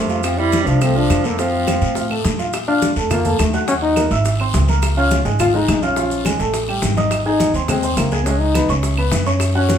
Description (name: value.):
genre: Afro-Cuban jazz.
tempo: 210 BPM.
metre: 4/4.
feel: straight.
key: unclear.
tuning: A4 = 440 Hz.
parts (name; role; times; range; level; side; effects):
dark trombone; melody; 0.0-9.8 s; A3 to F4; -19 LUFS; left 3 dB; none.
mellow tenor saxophone; second line; 0.0-2.2 s; C3 to G3; -22 LUFS; right 6 dB; none.
warm upright piano; accompaniment; 0.0-9.8 s; F3 to Ab6; -22 LUFS; right 2 dB; none.
upright bass; bass; 0.0-9.8 s; Ab1 to Bb2; -20 LUFS; equal; none.
bongos; percussion; 0.1-9.8 s; none; -28 LUFS; left 3 dB; none.
guiro; percussion; 0.1-9.8 s; none; -31 LUFS; left 4 dB; none.
maracas; percussion; 0.1-9.8 s; none; -32 LUFS; right 6 dB; none.
claves; percussion; 0.2-9.5 s; none; -31 LUFS; right 3 dB; none.
congas; percussion; 0.2-9.8 s; none; -26 LUFS; equal; none.
room: wet large studio reverb, RT60 0.9 s.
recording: band playing live in one room.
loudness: -15 LUFS.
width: side -8 dB against mid.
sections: 0.0-2.5 A section; 2.5-9.8 B section.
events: none.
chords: 0.2 F6; 2.5 Bbmaj7; 3.7 Ebm; 4.3 Abaug; 4.8 Db6; 6.0 Bbm7; 6.5 Ebadd11; 7.1 Abadd9; 8.3 Db5.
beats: | 0.24 0.53 0.81 1.10 | 1.39 1.68 1.96 2.25 | 2.54 2.82 3.11 3.40 | 3.68 3.97 4.25 4.54 | 4.83 5.11 5.40 5.68 | 5.97 6.26 6.54 6.83 | 7.12 7.40 7.69 7.97 | 8.26 8.55 8.83 9.12 | 9.41 9.69.